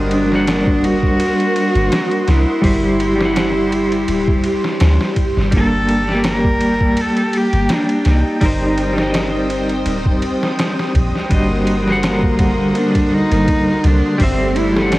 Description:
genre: trip hop.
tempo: 83 BPM.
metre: 4/4.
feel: swing 55% on 16ths.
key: unclear.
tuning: A4 = 440 Hz.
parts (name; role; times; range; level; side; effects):
rich cello; melody; 0.0-15.0 s; Bb3 to Bb4; -20 LUFS; equal; vintage 12-bit sampler grit, cassette tape, dub echo.
clean electric guitar; accompaniment; 0.0-15.0 s; D3 to F#5; -19 LUFS; equal; tremolo, vintage 12-bit sampler grit, cassette tape.
string machine, cellos; sustained chords; 0.0-15.0 s; G4 to Eb6; -22 LUFS; equal; ensemble chorus, cassette tape.
soft 808-style bass; bass; 0.0-15.0 s; D1 to D2; -19 LUFS; equal; none.
trip hop sampler-style drum kit; drums; 0.1-15.0 s; hi-hat, kick drum, ride cymbal, snare drum; -20 LUFS; equal; cassette tape.
room: little or no reverb.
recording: home recording on cassette, vinyl crackle.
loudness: -13 LUFS.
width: side -18 dB against mid.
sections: 0.0-15.0 A section.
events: none.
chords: 0.0 D7b9b13/G; 2.6 D9sus4; 5.5 Gmadd9; 8.4 Eb6/G; 11.3 D7b9b13/G; 14.2 Am7/G.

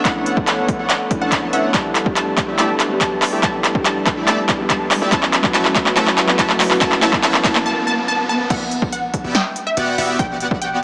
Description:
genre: future bass.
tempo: 142 BPM.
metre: 4/4.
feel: half-time.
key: unclear.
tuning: A4 = 437 Hz.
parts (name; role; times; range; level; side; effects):
felt-muted upright piano; accompaniment; 0.0-8.5 s; F#3 to C#5; -23 LUFS; equal; sidechain pumping.
dark studio string section; sustained chords; 0.0-7.6 s; D3 to B4; -28 LUFS; equal; none.
big bright polysynth; riff; 0.0-10.8 s; A3 to A5; -23 LUFS; equal; chorus, sidechain pumping.
warm 808-style bass; bass; 0.0-10.8 s; E1 to A2; -34 LUFS; equal; none.
riser; sound effects; 0.0-8.5 s; none; -27 LUFS; equal; none.
wide unison pluck; melody; 0.1-10.8 s; E5 to A5; -23 LUFS; equal; sidechain pumping, dub echo.
big-room dance drum kit; drums; 0.1-10.7 s; crash cymbal, handclaps, hi-hat, snare drum; -18 LUFS; equal; overdrive.
electronic kick drum; drums; 0.1-10.6 s; none; -23 LUFS; equal; overdrive.
airy dreamy lead; arpeggios; 8.5-10.8 s; E5 to F#5; -31 LUFS; equal; none.
room: moderate shimmer reverb, RT60 5.2 s.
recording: small speaker sound.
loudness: -14 LUFS.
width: side -32 dB against mid.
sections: 0.0-8.5 A section; 8.5-10.8 B section.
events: build-up 0.0-8.5; drum fill 0.0-7.7; break 7.7-8.5; drop 8.5-10.8.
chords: 0.0 Bm11; 1.7 A7sus4; 5.1 F#7sus4; 8.5 Em9.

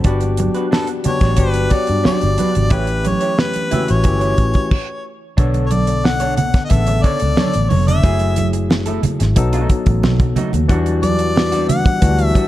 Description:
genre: lush 1970s-style soul.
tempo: 90 BPM.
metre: 4/4.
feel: straight.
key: unclear.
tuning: A4 = 440 Hz.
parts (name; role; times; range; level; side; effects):
barky tine electric piano; accompaniment; 0.0-12.5 s; C#3 to A4; -21 LUFS; left 4 dB; overdrive.
damped 70s drum kit; drums; 0.0-12.5 s; crash cymbal, hi-hat, kick drum, snare drum; -17 LUFS; equal; none.
electric guitar through a small old amp; riff; 0.1-12.5 s; G3 to E5; -27 LUFS; right 3 dB; none.
vintage muted fingered electric bass; bass; 0.1-12.3 s; F1 to G2; -18 LUFS; equal; none.
congas; percussion; 0.2-12.2 s; none; -22 LUFS; right 4 dB; none.
clear harmonica; melody; 0.7-12.5 s; A4 to F#5; -21 LUFS; left 1 dB; none.
percussive tonewheel organ; sustained chords; 10.7-12.5 s; E3 to F#4; -27 LUFS; right 2 dB; none.
room: light reverb, small room ambience.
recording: dark, warm production.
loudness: -14 LUFS.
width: side -14 dB against mid.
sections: 0.0-5.4 A section; 5.4-12.5 B section.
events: stop 4.7-5.4.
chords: 0.1 Gmaj7; 2.7 A7; 5.4 Bm9; 8.0 F#m9; 9.4 B7; 10.7 Em9.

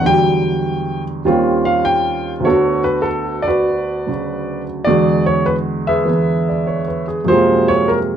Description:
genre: solo jazz.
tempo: 99 BPM.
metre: 4/4.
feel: swing 67% on 8ths.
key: unclear.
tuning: A4 = 443 Hz.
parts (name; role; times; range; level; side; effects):
warm upright piano; solo; 0.0-8.2 s; D2 to G5; -14 LUFS; right 1 dB; none.
room: wet club reverb, RT60 0.5 s.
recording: dark, warm production.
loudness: -14 LUFS.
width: side -9 dB against mid.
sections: 0.0-2.5 A section; 2.5-8.2 B section.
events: upright piano solo 0.0-2.5.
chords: 0.0 Em9; 1.2 Eb13; 2.5 D6; 4.9 E9; 7.3 F#maj9#11.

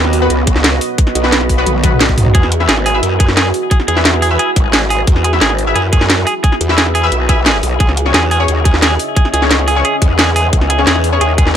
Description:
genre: dark technical drum and bass.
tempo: 176 BPM.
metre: 4/4.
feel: straight.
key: unclear.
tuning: A4 = 440 Hz.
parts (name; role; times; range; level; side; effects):
deep dark ambient pad; sustained chords; 0.0-11.6 s; B3 to E5; -20 LUFS; right 2 dB; chorus, built-in reverb, sidechain pumping.
orchestra-hit-like synth stab; stabs; 0.0-11.2 s; B3 to E5; -20 LUFS; left 3 dB; built-in reverb, ping-pong delay.
growl bass; bass; 0.0-11.6 s; G#1 to F#2; -15 LUFS; equal; chorus, tube saturation.
drum and bass drum kit; drums; 0.0-11.5 s; hi-hat, snare drum, toms; -14 LUFS; equal; none.
electronic kick drum; drums; 0.5-11.4 s; none; -12 LUFS; equal; none.
semi-hollow electric guitar; arpeggios; 2.3-11.5 s; G#4; -17 LUFS; right 1 dB; sidechain pumping, ping-pong delay.
room: light reverb, digital ambience.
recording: none.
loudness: -10 LUFS.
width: side -9 dB against mid.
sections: 0.0-11.6 A section.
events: drum fill 1.7-2.3.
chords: 0.0 Badd9; 2.3 Eadd9; 7.8 C#m.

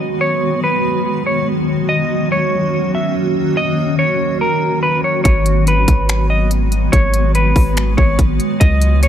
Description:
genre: hip hop, atmospheric cloud-rap.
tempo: 143 BPM.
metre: 4/4.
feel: half-time.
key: G# minor.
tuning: A4 = 439 Hz.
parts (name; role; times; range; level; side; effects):
granular cloud pad; sustained chords; 0.0-9.1 s; C#3 to F#4; -18 LUFS; equal; built-in reverb, sidechain pumping.
clean electric guitar; melody; 0.2-9.1 s; A#4 to E5; -18 LUFS; equal; low-pass filter, digital delay.
long sustained 808-style bass; bass; 5.3-9.1 s; G#1 to C#2; -15 LUFS; equal; none.
trap drum kit; drums; 5.3-9.1 s; finger snaps, hi-hat, kick drum; -14 LUFS; equal; none.
room: little or no reverb.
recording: none.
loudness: -13 LUFS.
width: side -10 dB against mid.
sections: 0.0-9.1 A section.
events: none.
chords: 0.0 G#m7; 1.9 D#m7; 5.3 G#m7.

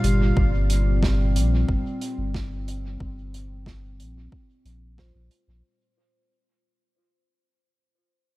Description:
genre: ambient dub.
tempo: 91 BPM.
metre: 4/4.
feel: straight.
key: G minor.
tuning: A4 = 440 Hz.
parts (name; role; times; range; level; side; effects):
warbly tape-like pad; sustained chords; 0.0-5.6 s; Bb2 to F4; -28 LUFS; equal; chorus, built-in reverb.
soft synth bell; arpeggios; 0.0-7.6 s; F4 to C6; -38 LUFS; right 1 dB; chorus, low-pass filter, tape echo.
warm sub bass; bass; 0.0-5.6 s; G1 to Bb1; -23 LUFS; equal; none.
warm soul drum kit; drums; 0.0-5.4 s; hi-hat, snare drum; -34 LUFS; right 4 dB; dub echo.
electronic kick drum; drums; 0.4-5.1 s; none; -26 LUFS; equal; overdrive.
room: studio ambience.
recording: none.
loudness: -20 LUFS.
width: side -18 dB against mid.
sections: 0.0-5.6 A section.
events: fade-out 0.0-5.6; filter sweep on synth bell 0.0-5.6.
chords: 0.0 Gm7.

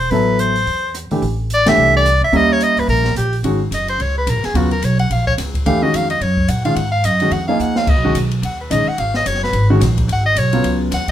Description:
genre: modal jazz.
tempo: 216 BPM.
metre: 4/4.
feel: swing 59% on 8ths.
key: G# dorian from 3.4 s.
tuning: A4 = 440 Hz.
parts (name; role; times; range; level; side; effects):
clear soprano saxophone; melody; 0.0-11.1 s; F#4 to F#5; -17 LUFS; left 1 dB; none.
upright bass; bass; 0.0-11.1 s; F#1 to A#2; -19 LUFS; right 1 dB; none.
open jazz drum kit; drums; 0.0-11.1 s; crash cymbal, hi-hat, kick drum, ride cymbal, rim click, snare drum; -25 LUFS; left 1 dB; none.
warm baby grand piano; accompaniment; 0.1-10.9 s; C#3 to A4; -18 LUFS; equal; none.
room: moderate club reverb, RT60 0.7 s.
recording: minimal, uncompressed stereo recording.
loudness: -14 LUFS.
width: side -11 dB against mid.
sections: 0.0-3.4 A section; 3.4-11.1 B section.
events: band accent 1.6; soprano saxophone solo 3.4-11.1; drum fill 7.6.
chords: 0.0 Am11; 2.3 D#7b9; 3.4 G#9sus4.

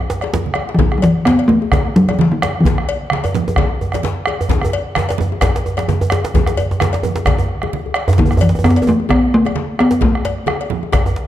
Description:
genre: west african traditional, West African drum ensemble.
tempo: 130 BPM.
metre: 4/4.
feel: swing 56% on 16ths.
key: unclear.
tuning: A4 = 442 Hz.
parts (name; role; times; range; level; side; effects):
congas; percussion; 0.0-11.1 s; none; -24 LUFS; right 6 dB; none.
djembe; percussion; 0.1-11.2 s; none; -24 LUFS; left 6 dB; none.
djembe; percussion; 0.1-11.3 s; none; -19 LUFS; right 2 dB; none.
bombo; percussion; 0.2-11.0 s; none; -19 LUFS; equal; none.
cowbell; percussion; 0.2-11.1 s; none; -27 LUFS; left 6 dB; none.
talking drum; melody; 0.7-3.1, 8.2-10.9 s; D3 to B3; -14 LUFS; left 1 dB; none.
room: moderate recital hall reverb, RT60 1.6 s.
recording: dark, warm production.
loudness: -13 LUFS.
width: side -12 dB against mid.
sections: 0.8-11.3 A section.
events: drum fill 0.0-0.8, 7.7-8.2.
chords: none.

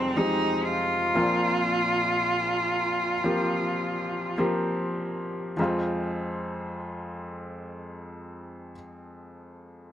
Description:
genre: pop ballad.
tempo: 48-62 BPM.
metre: 4/4.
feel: straight.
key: F minor.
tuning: A4 = 440 Hz.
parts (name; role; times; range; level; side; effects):
bright cello; melody; 0.0-4.4 s; C4 to F4; -25 LUFS; right 1 dB; none.
bright upright piano; accompaniment; 0.0-9.9 s; F1 to G4; -29 LUFS; left 1 dB; none.
room: moderate lush hall reverb, RT60 2.3 s.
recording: dark, warm production.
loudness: -24 LUFS.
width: side -11 dB against mid.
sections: 0.0-5.6 A section; 5.6-9.9 B section.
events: slowing down 0.0-5.6.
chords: 0.0 Fm; 1.1 Bbsus2; 5.6 Fm.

